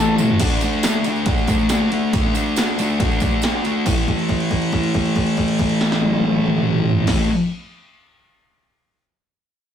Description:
garage rock duo or trio; 138 BPM; 4/4; straight; A4 = 440 Hz
thick fuzz guitar; riff; 0.0-7.3 s; A2 to D4; -18 LUFS; left 1 dB; distortion
punchy analog drum machine; drums; 0.2-7.2 s; crash cymbal, kick drum, ride cymbal, snare drum, toms; -21 LUFS; equal
tambourine; percussion; 0.2-4.1 s; -34 LUFS; right 5 dB
moderate small room reverb, RT60 0.5 s; rough rehearsal-room recording, tube saturation; -16 LUFS; side -9 dB against mid
0.4-3.9 A section; 3.9-7.3 B section
drum fill 0.0-0.4; held note 3.9-7.1
0.4 D5; 3.9 A5

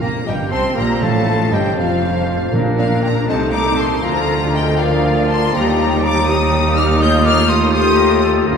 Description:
quick classical-period movement for symphony orchestra; 80 BPM (dotted quarters); 6/8; rubato; A4 = 440 Hz
rich studio violin section; melody; 0.0-8.2 s; F5 to G6; -24 LUFS; left 4 dB
clear symphonic violin section; second line; 0.0-8.2 s; F5 to G6; -25 LUFS; left 3 dB
hollow concert flute; second line; 0.0-8.2 s; C5 to Eb6; -23 LUFS; left 2 dB
mellow clarinet; second line; 0.0-8.6 s; D4 to C5; -26 LUFS; left 2 dB
warm oboe; second line; 0.0-8.6 s; A4 to C6; -26 LUFS; equal
rich chamber viola section; accompaniment; 0.0-8.6 s; F3 to F4; -22 LUFS; right 2 dB
clear chamber cello section; bass; 0.0-8.6 s; D2 to C3; -20 LUFS; right 1 dB
warm symphonic double bass section; bass; 0.0-8.6 s; F1 to Eb2; -21 LUFS; right 3 dB
timpani; percussion; 0.0-3.2 s; Bb2; -26 LUFS; equal
mellow French horn section; sustained chords; 0.3-8.6 s; Eb4 to Bb4; -21 LUFS; left 4 dB
wet cathedral reverb, RT60 5.1 s; dark, warm production; -13 LUFS; side -6 dB against mid
0.0-8.6 A section
0.3 C5/G; 1.0 F; 2.5 Bb; 3.3 Adim/C; 4.0 Bb/D; 5.5 Eb; 7.0 F7/Eb

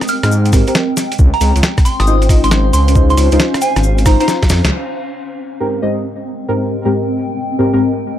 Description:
UK garage, two-step garage; 136 BPM; 4/4; swing 66% on 16ths; Ab major; A4 = 439 Hz
deep mellow chord stab; stabs; 0.0-7.8 s; Ab2 to Eb5; -17 LUFS; equal; chorus, tape echo
boom bap sampler-style drum kit; drums; 0.0-4.8 s; crash cymbal, hi-hat, rim click, snare drum; -20 LUFS; equal; low-pass filter on hats, low-pass filter on snare, low-pass filter on cymbals
cabasa; percussion; 0.0-4.7 s; -27 LUFS; left 5 dB
granular cloud pad; texture; 0.0-8.2 s; Ab3 to G5; -21 LUFS; left 2 dB; built-in reverb, sidechain pumping
soft synth bell; melody; 0.1-4.3 s; Ab5 to F6; -20 LUFS; right 2 dB; chorus, phaser, tape echo
dark detuned saw bass; bass; 0.2-4.7 s; Ab1 to Ab2; -13 LUFS; equal
electronic kick drum; drums; 0.5-4.5 s; -11 LUFS; equal
moderate studio ambience, RT60 0.5 s; dark, warm production; -11 LUFS; side -11 dB against mid
0.0-4.7 A section; 4.7-8.2 B section
filter sweep on synth stab 0.0-4.7; drum fill 4.3-4.7; band accent 4.6
0.0 Abmaj7; 1.2 Dbmaj7; 4.7 Abmaj7

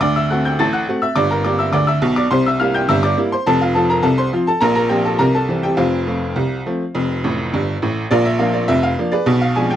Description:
ragtime piano; 104 BPM; 2/4; straight; F major; A4 = 441 Hz
tack piano; solo; 0.0-9.8 s; F1 to A6; -15 LUFS; equal
light reverb; dry, close 1970s-style studio recording; -15 LUFS; side -11 dB against mid
0.0-8.1 A section; 8.1-9.8 B section
honky-tonk piano fill 7.2-8.1
0.0 D7; 1.2 Gm; 2.3 C7; 3.5 F; 4.6 Bb; 5.2 C7; 5.8 F; 8.1 Bb

